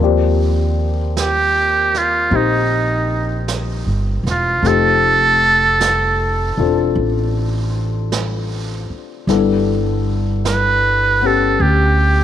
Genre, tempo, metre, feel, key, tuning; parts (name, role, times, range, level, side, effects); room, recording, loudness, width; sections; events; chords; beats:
jazz ballad; 52 BPM; 4/4; swing 68% on 8ths; Eb major; A4 = 439 Hz
warm concert grand piano; accompaniment; 0.0-12.2 s; F3 to D5; -21 LUFS; left 10 dB
upright bass; bass; 0.0-12.2 s; Fb1 to Eb2; -18 LUFS; right 1 dB
jazz brush drum kit; drums; 0.0-12.2 s; brushed snare drum, hi-hat, snare drum; -28 LUFS; right 6 dB
trumpet with metal mute; melody; 1.2-12.2 s; Eb4 to B4; -15 LUFS; right 2 dB
moderate plate reverb, RT60 2.9 s; 1960s-style stereo with parts hard left and right; -14 LUFS; side -10 dB against mid
0.0-12.2 A section
0.0 Ebmaj13; 4.6 F9; 9.3 G69
1.15 2.31 3.47 | 4.63 5.79 6.96 8.12 | 9.28 10.44 11.60